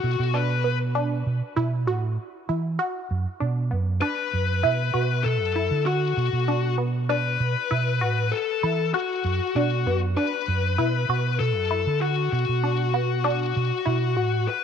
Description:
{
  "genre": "progressive instrumental, progressive",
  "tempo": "98 BPM",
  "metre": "5/4",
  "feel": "straight",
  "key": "B minor",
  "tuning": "A4 = 440 Hz",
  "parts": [
    { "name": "bluesy overdriven lead guitar", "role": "melody", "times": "0.0-14.6 s", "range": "F#4 to B4", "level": "-26 LUFS", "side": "left 9 dB", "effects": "distortion, tape echo" },
    { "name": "resonant blip pluck", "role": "arpeggios", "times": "0.0-14.6 s", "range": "B3 to F#4", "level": "-29 LUFS", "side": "right 2 dB", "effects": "phaser" },
    { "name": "fingered electric bass", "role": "bass", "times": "0.0-14.5 s", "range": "F#2 to E3", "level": "-24 LUFS", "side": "right 2 dB", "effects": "none" }
  ],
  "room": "light reverb, digital ambience",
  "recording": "none",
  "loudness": "-22 LUFS",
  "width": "side -7 dB against mid",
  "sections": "0.0-14.6 A section",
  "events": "none",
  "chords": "0.0 Bm",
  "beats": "0.34 | 0.95 1.56 2.18 2.79 3.40 | 4.02 4.63 5.25 5.86 6.48 | 7.09 7.71 8.32 8.94 9.55 | 10.17 10.79 11.40 12.02 12.63 | 13.25 13.86 14.48"
}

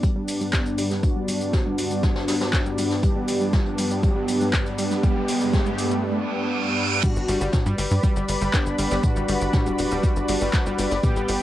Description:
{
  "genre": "melodic techno",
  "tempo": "120 BPM",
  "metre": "4/4",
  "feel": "straight",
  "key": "unclear",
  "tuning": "A4 = 440 Hz",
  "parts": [
    { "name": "lush unison pad", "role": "sustained chords", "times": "0.0-11.4 s", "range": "G2 to B5", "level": "-27 LUFS", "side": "equal", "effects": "chorus, sidechain pumping, cassette tape" },
    { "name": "analog pluck", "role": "arpeggios", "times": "0.0-11.2 s", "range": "G3", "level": "-30 LUFS", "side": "equal", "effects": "chorus, sidechain pumping, cassette tape, analog delay" },
    { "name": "deep house drum kit", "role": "drums", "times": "0.0-11.4 s", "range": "crash cymbal, handclaps, hi-hat, shaker, toms", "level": "-30 LUFS", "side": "equal", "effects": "overdrive, high-pass filter on hats, cassette tape, high-pass filter on toms, high-pass filter on perc, high-pass filter on snare, high-pass filter on cymbals" },
    { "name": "electronic kick drum", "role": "drums", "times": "0.0-11.1 s", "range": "none", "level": "-22 LUFS", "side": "equal", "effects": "overdrive, cassette tape" },
    { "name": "jazz brush drum kit", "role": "drums", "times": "0.0-11.4 s", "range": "hi-hat, snare drum", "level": "-36 LUFS", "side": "left 1 dB", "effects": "sidechain pumping on hats, high-pass filter on hats, cassette tape, high-pass filter on snare, high-pass filter on room" },
    { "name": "riser and reverse cymbal", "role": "sound effects", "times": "2.3-7.0 s", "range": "none", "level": "-29 LUFS", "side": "right 3 dB", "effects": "none" },
    { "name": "analog synth brass", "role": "melody", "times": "0.5-11.4 s", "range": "B3 to G4", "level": "-28 LUFS", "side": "left 1 dB", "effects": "chorus, sidechain pumping, tape echo" },
    { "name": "tight sequencer bass", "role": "bass", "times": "7.2-11.4 s", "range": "D1 to G2", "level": "-26 LUFS", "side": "equal", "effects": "sidechain pumping" }
  ],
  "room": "moderate booth ambience, RT60 0.2 s",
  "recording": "home recording on cassette",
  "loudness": "-20 LUFS",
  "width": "side -13 dB against mid",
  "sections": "0.0-7.0 A section; 7.0-11.4 B section",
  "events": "build-up 0.0-7.0; filter sweep on synth pluck 0.0-7.0; filter sweep on analog polysynth 0.0-7.0; riser 2.3-6.0; reverse cymbal 6.0-7.0; drop 7.0-11.4",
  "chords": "0.0 G",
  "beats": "0.03 0.53 | 1.03 1.53 2.03 2.53 | 3.03 3.53 4.03 4.53 | 5.03 5.53 6.03 6.53 | 7.03 7.53 8.03 8.53 | 9.03 9.53 10.03 10.53 | 11.03"
}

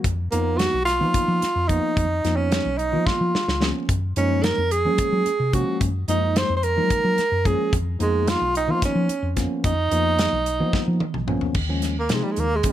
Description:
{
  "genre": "electric jazz fusion",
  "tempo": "219 BPM (eighths)",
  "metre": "7/8",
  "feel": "straight",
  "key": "unclear",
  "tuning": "A4 = 440 Hz",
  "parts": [
    { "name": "tine electric piano", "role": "accompaniment", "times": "0.0-12.7 s", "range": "Eb3 to F4", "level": "-28 LUFS", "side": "left 2 dB", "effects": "medium stereo tremolo" },
    { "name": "hollow-body short-scale fingered electric bass", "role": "bass", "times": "0.0-12.6 s", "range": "Bb1 to Gb3", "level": "-24 LUFS", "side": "left 1 dB", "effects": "none" },
    { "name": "modern studio drum kit", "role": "drums", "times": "0.0-12.7 s", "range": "crash cymbal, hi-hat, kick drum, snare drum, toms", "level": "-25 LUFS", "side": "equal", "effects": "none" },
    { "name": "breathy tenor saxophone", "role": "melody", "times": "0.3-12.7 s", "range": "G3 to C5", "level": "-22 LUFS", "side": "right 2 dB", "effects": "none" }
  ],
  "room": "light reverb",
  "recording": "none",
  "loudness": "-19 LUFS",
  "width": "side -12 dB against mid",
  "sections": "0.0-11.6 A section; 11.6-12.7 B section",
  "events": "drum fill 3.1-3.9, 10.7-11.6; tenor saxophone solo 11.6-12.7",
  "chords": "0.0 Db13; 3.9 Gbmaj13; 7.7 Db13; 11.6 Eb9sus4",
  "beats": "| 0.04 0.32 0.59 0.87 1.14 1.42 1.69 | 1.97 2.24 2.52 2.79 3.07 3.34 3.62 | 3.89 4.17 4.44 4.71 4.99 5.26 5.54 | 5.81 6.09 6.36 6.63 6.91 7.18 7.46 | 7.73 8.00 8.28 8.55 8.82 9.10 9.37 | 9.64 9.92 10.19 10.46 10.73 11.01 11.28 | 11.55 11.83 12.10 12.37 12.64"
}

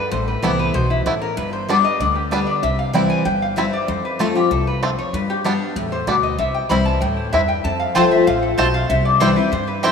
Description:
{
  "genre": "bluegrass",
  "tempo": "192 BPM",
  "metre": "4/4",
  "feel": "straight",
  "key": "C major",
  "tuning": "A4 = 440 Hz",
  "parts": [
    { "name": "lap resonator guitar", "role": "melody", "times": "0.0-9.9 s", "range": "E4 to B5", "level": "-21 LUFS", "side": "left 3 dB", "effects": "none" },
    { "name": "picked steel-string acoustic guitar", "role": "accompaniment", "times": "0.0-9.9 s", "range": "E2 to G4", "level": "-20 LUFS", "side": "left 3 dB", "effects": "none" },
    { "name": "upright bass", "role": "bass", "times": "0.1-9.9 s", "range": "G1 to G2", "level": "-24 LUFS", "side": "equal", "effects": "none" },
    { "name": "bluegrass banjo", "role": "melody", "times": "0.4-9.9 s", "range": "G3 to F4", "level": "-26 LUFS", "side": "right 5 dB", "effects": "none" },
    { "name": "mandolin", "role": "stabs", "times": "7.9-9.9 s", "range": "C4 to A5", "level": "-22 LUFS", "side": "right 3 dB", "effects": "none" }
  ],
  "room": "wet lush hall reverb, RT60 3.0 s",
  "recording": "rough home demo mix",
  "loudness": "-16 LUFS",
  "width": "side -6 dB against mid",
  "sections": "0.0-9.9 A section",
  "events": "none",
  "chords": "0.1 Amadd9; 1.4 G; 2.6 C; 3.9 F; 5.1 G; 6.4 C; 7.6 F; 8.9 C",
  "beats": "| 0.12 0.44 0.75 1.06 | 1.38 1.69 2.00 2.32 | 2.63 2.94 3.26 3.57 | 3.88 4.20 4.51 4.82 | 5.14 5.45 5.76 6.08 | 6.39 6.70 7.02 7.33 | 7.64 7.96 8.27 8.58 | 8.90 9.21 9.52 9.84"
}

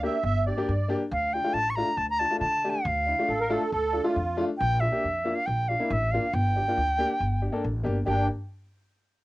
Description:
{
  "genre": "klezmer",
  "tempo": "138 BPM",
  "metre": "4/4",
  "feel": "straight",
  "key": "G minor",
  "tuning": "A4 = 439 Hz",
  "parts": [
    { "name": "musette accordion", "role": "second line", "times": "0.0-4.5, 8.1-8.3 s", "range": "D4 to E5", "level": "-28 LUFS", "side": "right 3 dB", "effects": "cassette tape" },
    { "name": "warm upright piano", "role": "accompaniment", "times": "0.0-8.3 s", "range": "A3 to A4", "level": "-30 LUFS", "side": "left 2 dB", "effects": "cassette tape" },
    { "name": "upright bass", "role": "bass", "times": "0.0-8.3 s", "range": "G1 to D3", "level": "-29 LUFS", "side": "equal", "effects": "none" },
    { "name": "bright reedy silver concert flute", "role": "melody", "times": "1.1-8.3 s", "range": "E5 to C#6", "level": "-26 LUFS", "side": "equal", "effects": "cassette tape" }
  ],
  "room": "light reverb",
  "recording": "home recording on cassette",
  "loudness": "-24 LUFS",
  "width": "side -18 dB against mid",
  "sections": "0.0-8.1 A section; 8.1-9.2 B section",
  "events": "none",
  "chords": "0.0 Gm; 1.1 Dm; 4.6 Bb; 6.3 Gm",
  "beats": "0.24 0.68 | 1.11 1.55 1.98 2.42 | 2.85 3.28 3.72 4.15 | 4.59 5.02 5.46 5.89 | 6.33 6.76 7.19 7.63 | 8.06"
}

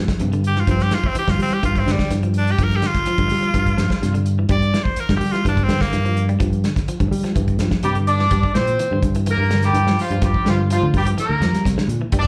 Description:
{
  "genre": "afrobeat",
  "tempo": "126 BPM",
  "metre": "4/4",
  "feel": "straight",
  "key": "G dorian",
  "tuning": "A4 = 439 Hz",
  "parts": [
    { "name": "semi-hollow electric guitar", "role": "arpeggios", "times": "0.0-12.3 s", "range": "C3 to G3", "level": "-29 LUFS", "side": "equal", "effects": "slapback echo" },
    { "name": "fingered electric bass", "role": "bass", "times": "0.0-12.2 s", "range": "D2 to G3", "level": "-22 LUFS", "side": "equal", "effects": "none" },
    { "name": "warm soul drum kit", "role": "drums", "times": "0.1-12.3 s", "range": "hi-hat, kick drum, snare drum", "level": "-24 LUFS", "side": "equal", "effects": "none" },
    { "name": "raspy tenor saxophone", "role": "melody", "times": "0.5-6.3 s", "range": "G3 to D5", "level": "-25 LUFS", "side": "equal", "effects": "slapback echo" },
    { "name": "clear horn section", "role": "melody", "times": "7.8-12.3 s", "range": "F3 to D5", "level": "-23 LUFS", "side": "equal", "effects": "slapback echo" }
  ],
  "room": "small room ambience",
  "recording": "live gig heard through the venue's PA, club reverb, faint mains hum",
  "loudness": "-19 LUFS",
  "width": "mono",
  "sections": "0.0-8.3 A section; 8.3-12.3 B section",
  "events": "tenor saxophone solo 0.0-8.3",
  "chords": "0.0 G7(no3); 8.3 Gm7",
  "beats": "0.20 | 0.68 1.16 1.64 2.12 | 2.59 3.07 3.55 4.02 | 4.50 4.98 5.46 5.93 | 6.41 6.89 7.36 7.84 | 8.32 8.79 9.27 9.75 | 10.22 10.70 11.18 11.65 | 12.13"
}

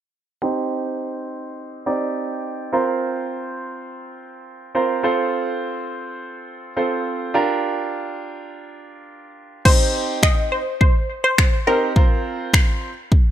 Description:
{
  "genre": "dance-pop",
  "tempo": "104 BPM",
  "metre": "4/4",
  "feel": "straight",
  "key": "C dorian",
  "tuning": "A4 = 440 Hz",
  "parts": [
    { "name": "clear grand piano", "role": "accompaniment", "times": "0.4-12.9 s", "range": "C4 to D5", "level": "-23 LUFS", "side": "right 3 dB", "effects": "sidechain pumping, low-pass filter" },
    { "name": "wide unison pluck", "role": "melody", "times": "9.7-13.3 s", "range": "Bb4 to Eb5", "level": "-21 LUFS", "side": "left 1 dB", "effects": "tape echo" },
    { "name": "pop drum kit", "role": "drums", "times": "9.7-13.2 s", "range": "crash cymbal, finger snaps, kick drum", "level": "-15 LUFS", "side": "equal", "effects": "none" }
  ],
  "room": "digital ambience",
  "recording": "none",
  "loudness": "-18 LUFS",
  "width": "side -11 dB against mid",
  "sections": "0.4-9.7 A section; 9.7-13.3 B section",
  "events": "filter sweep on grand piano 0.4-9.7",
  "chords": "0.4 Cm; 2.7 Bbsus2; 5.0 F; 7.3 Gm7; 9.7 Cm; 12.0 Bbsus2",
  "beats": "| 0.42 1.00 1.58 2.15 | 2.73 3.31 3.88 4.46 | 5.04 5.62 6.19 6.77 | 7.35 7.92 8.50 9.08 | 9.65 10.23 10.81 11.38 | 11.96 12.54 13.12"
}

